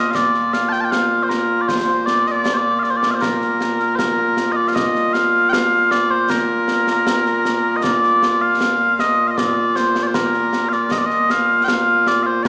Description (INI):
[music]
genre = scottish traditional, Scottish pipe music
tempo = 78 BPM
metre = 2/4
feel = straight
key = Bb major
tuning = A4 = 440 Hz
[part]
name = mellow small bagpipes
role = melody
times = 0.0-12.5 s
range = Bb2 to A5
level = -18 LUFS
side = equal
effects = none
[part]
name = concert snare drum and concert bass drum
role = drums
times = 0.1-12.5 s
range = none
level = -28 LUFS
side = equal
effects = none
[sound]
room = wet recital hall reverb, RT60 1.7 s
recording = recorded in a church or concert hall, small speaker sound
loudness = -18 LUFS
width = mono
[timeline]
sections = 0.0-4.8 A section; 4.8-12.5 B section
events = none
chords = none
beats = | 0.15 0.92 | 1.69 2.45 | 3.22 3.99 | 4.76 5.53 | 6.30 7.07 | 7.84 8.61 | 9.38 10.15 | 10.92 11.69 | 12.45